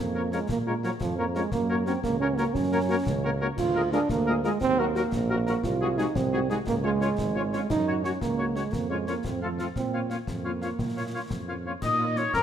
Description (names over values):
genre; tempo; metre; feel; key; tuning
military-style march for wind band; 116 BPM (dotted quarters); 6/8; straight; Bb minor; A4 = 440 Hz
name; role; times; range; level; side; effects
mellow euphonium; second line; 0.0-12.4 s; F3 to F4; -28 LUFS; right 4 dB; none
warm tuba; bass; 0.0-12.4 s; Ab1 to Bb2; -31 LUFS; right 2 dB; none
clear cornet; melody; 0.1-12.2 s; F4 to F5; -39 LUFS; equal; none
clear woodwind section; second line; 0.2-12.4 s; F4 to Eb5; -32 LUFS; left 3 dB; none
dark French horn section; accompaniment; 0.2-12.2 s; F3 to Gb4; -35 LUFS; left 7 dB; none
concert snare drum, concert bass drum and clash cymbals; drums; 0.3-12.4 s; none; -35 LUFS; left 2 dB; none
room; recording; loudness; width
light reverb; close, detailed microphones; -24 LUFS; side -9 dB against mid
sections
0.0-11.8 A section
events
none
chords
0.0 Bbm; 1.5 Gb; 3.6 Bb7/D; 4.6 Ebm; 5.6 Ab7/C; 6.7 Db; 7.7 Gb; 8.7 Bbm/F; 9.2 F; 9.8 Bbm